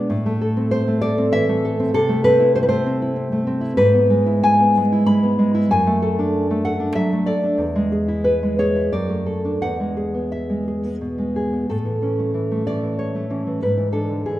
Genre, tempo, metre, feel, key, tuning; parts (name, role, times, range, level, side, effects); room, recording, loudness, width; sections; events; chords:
romantic piece for solo classical guitar; 84-99 BPM; 3/4; rubato; A minor, A major from 3.8 s; A4 = 440 Hz
nylon-string guitar; solo; 0.0-14.4 s; E2 to B5; -17 LUFS; equal
wet recital hall reverb, RT60 1.4 s; minimal, uncompressed stereo recording; -17 LUFS; side -14 dB against mid
0.0-11.7 A section; 11.7-14.4 B section
0.1 Am; 1.9 Am/C; 3.8 E/G#; 5.7 D/F#; 7.6 E; 8.9 D/F#; 9.6 E; 11.7 A; 13.6 E7/G#